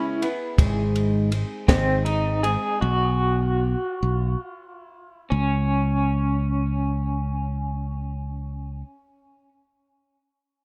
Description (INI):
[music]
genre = indie folk with a building arrangement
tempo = 44-55 BPM (dotted quarters)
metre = 6/8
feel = straight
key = unclear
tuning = A4 = 440 Hz
[part]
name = electric guitar through a small old amp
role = melody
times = 0.0-8.8 s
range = B#3 to G#4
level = -29 LUFS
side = equal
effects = tremolo, digital delay
[part]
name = picked plugged-in twelve-string acoustic guitar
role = accompaniment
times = 0.0-2.8 s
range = G#2 to G#4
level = -30 LUFS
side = equal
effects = none
[part]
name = bright upright piano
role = arpeggios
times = 0.0-0.6 s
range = B3 to C#4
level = -32 LUFS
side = equal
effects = none
[part]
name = compact cocktail drum kit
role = drums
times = 0.2-2.6 s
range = kick drum, ride cymbal, snare drum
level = -22 LUFS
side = equal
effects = none
[part]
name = fingered electric bass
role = bass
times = 0.6-8.8 s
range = G#1 to C#2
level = -26 LUFS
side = equal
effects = none
[sound]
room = light reverb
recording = dark, warm production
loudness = -24 LUFS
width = mono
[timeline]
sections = 0.0-5.3 A section; 5.3-10.6 B section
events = slowing down 0.6-5.3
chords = 0.0 C#m7; 0.6 G#; 2.8 B5; 5.3 N.C.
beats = | 0.58 1.68 | 2.82 4.02 | 5.32 6.67 | 8.02